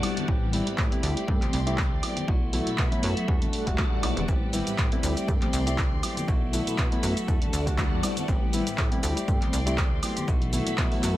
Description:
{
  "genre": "filtered disco house",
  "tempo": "120 BPM",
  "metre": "4/4",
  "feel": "swing 55% on 16ths",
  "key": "unclear",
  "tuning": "A4 = 439 Hz",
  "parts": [
    { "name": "reed electric piano", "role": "accompaniment", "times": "0.0-11.2 s", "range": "F#3 to B4", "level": "-31 LUFS", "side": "equal", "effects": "overdrive, fast tremolo, phaser, sidechain pumping, low-pass filter" },
    { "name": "phased string machine", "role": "sustained chords", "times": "0.0-11.2 s", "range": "G3 to C6", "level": "-35 LUFS", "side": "left 2 dB", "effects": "ensemble chorus, phaser, sidechain pumping, low-pass filter" },
    { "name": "direct-recorded clean electric guitar", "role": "riff", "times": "0.0-11.2 s", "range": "E3 to G4", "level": "-36 LUFS", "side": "left 2 dB", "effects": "sidechain pumping, low-pass filter" },
    { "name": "punchy analog drum machine", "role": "drums", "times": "0.0-11.1 s", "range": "cabasa, handclaps, hi-hat, woodblock", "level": "-32 LUFS", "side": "right 1 dB", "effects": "sidechain pumping on cymbals, sidechain pumping on hats, sidechain pumping on perc" },
    { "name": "tambourine and congas", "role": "percussion", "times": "0.0-11.1 s", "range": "none", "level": "-39 LUFS", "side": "left 2 dB", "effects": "none" },
    { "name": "plucky analog bass", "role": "bass", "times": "0.3-11.1 s", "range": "E1 to B2", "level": "-30 LUFS", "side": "equal", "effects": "sidechain pumping, low-pass filter" },
    { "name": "electronic kick drum", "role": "drums", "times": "0.3-10.9 s", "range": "none", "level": "-27 LUFS", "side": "equal", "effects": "none" }
  ],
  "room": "little or no reverb",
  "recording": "none",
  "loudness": "-23 LUFS",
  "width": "side -15 dB against mid",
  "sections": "0.0-11.2 A section",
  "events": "none",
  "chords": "0.3 Am9; 1.0 D7sus4; 2.3 B7sus4; 3.3 Em11; 4.3 Am9; 5.0 D7sus4; 6.3 B7sus4; 7.3 Em11; 8.3 Am9; 9.0 D7sus4; 10.3 B7sus4"
}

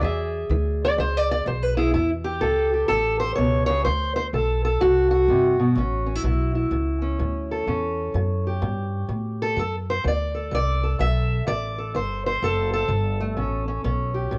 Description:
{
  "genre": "acoustic country blues, solo or duo",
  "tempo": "126 BPM",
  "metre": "4/4",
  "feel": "swing 64% on 8ths",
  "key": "A mixolydian",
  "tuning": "A4 = 439 Hz",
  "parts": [
    { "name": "fingerpicked steel-string acoustic guitar", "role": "melody", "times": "0.0-14.4 s", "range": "A2 to E5", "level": "-25 LUFS", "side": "equal", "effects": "cassette tape, plate reverb" },
    { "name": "upright bass", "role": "bass", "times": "0.0-14.4 s", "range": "F#1 to A2", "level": "-28 LUFS", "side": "equal", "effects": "none" }
  ],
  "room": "moderate booth ambience, RT60 0.3 s",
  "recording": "home recording on cassette",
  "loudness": "-23 LUFS",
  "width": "mono",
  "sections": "0.0-1.9 A section; 1.9-14.4 B section",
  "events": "steel-string acoustic guitar solo 0.0-1.9",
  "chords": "0.0 E7; 1.9 A7; 3.9 D7; 5.8 A7; 9.6 D7; 13.4 A7"
}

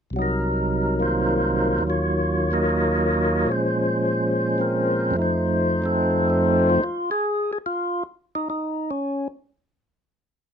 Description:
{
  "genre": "jazz",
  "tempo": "144 BPM",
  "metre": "4/4",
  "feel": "swing 66% on 8ths",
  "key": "unclear",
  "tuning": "A4 = 440 Hz",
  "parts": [
    { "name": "percussive tonewheel organ", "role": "solo", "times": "0.1-9.3 s", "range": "C2 to Eb5", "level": "-20 LUFS", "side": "equal", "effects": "slow rotary speaker, overdrive" }
  ],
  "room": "light reverb",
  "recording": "close, detailed microphones",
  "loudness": "-20 LUFS",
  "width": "side -7 dB against mid",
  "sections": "0.2-6.8 A section; 6.8-10.5 B section",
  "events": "none",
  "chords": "0.2 Cm7b5; 1.8 Ebm7; 3.5 Bbm7; 5.1 F7; 6.8 N.C."
}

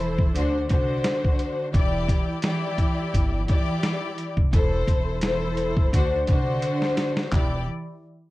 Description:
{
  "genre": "hip hop, boom-bap hip-hop",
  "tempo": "86 BPM",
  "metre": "4/4",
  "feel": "swing 56% on 16ths",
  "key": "E minor",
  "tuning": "A4 = 440 Hz",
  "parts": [
    { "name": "warm studio string section", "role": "accompaniment", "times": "0.0-7.6 s", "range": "D3 to D5", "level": "-25 LUFS", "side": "left 1 dB", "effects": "none" },
    { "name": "upright bass", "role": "bass", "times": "0.0-7.6 s", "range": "E1 to D2", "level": "-28 LUFS", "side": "equal", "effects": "none" },
    { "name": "boom bap sampler-style drum kit", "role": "drums", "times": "0.2-7.5 s", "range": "handclaps, hi-hat, kick drum, snare drum", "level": "-23 LUFS", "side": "equal", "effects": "none" }
  ],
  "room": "light reverb",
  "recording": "dark, warm production",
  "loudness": "-21 LUFS",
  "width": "side -18 dB against mid",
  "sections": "0.0-7.3 A section",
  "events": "drum fill 6.6-7.3",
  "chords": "0.3 D7; 1.7 Em7; 4.5 Am/E; 5.9 D7; 7.3 Em7"
}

